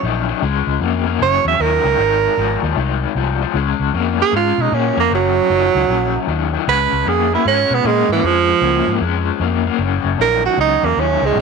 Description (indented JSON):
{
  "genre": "electric blues shuffle",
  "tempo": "154 BPM",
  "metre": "4/4",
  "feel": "swing 64% on 8ths",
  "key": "Db mixolydian",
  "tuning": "A4 = 440 Hz",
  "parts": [
    { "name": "breathy tenor saxophone", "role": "melody", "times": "0.0-11.4 s", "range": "Fb3 to Fb5", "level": "-16 LUFS", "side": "right 10 dB", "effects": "none" },
    { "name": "raw garage guitar", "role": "riff", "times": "0.0-11.4 s", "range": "Gb2 to Bb3", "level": "-19 LUFS", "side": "left 18 dB", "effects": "overdrive, tremolo" },
    { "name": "vintage muted fingered electric bass", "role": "bass", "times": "0.0-11.4 s", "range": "Gb1 to Cb3", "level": "-21 LUFS", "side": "left 2 dB", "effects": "none" }
  ],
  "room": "light reverb, studio ambience",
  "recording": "1960s-style stereo with parts hard left and right",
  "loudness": "-14 LUFS",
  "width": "side -5 dB against mid",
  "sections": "0.0-3.5 A section; 3.5-11.4 B section",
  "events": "tenor saxophone solo 3.5-11.4",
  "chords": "0.4 Db; 1.2 Gb7; 2.0 Abadd9; 3.5 Db; 5.1 Gb; 6.7 Db; 9.8 Gb",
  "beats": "0.03 | 0.42 0.81 1.20 1.59 | 1.98 2.37 2.76 3.15 | 3.54 3.94 4.33 4.72 | 5.11 5.50 5.89 6.28 | 6.67 7.06 7.45 7.84 | 8.23 8.63 9.02 9.41 | 9.80 10.19 10.58 10.97 | 11.37"
}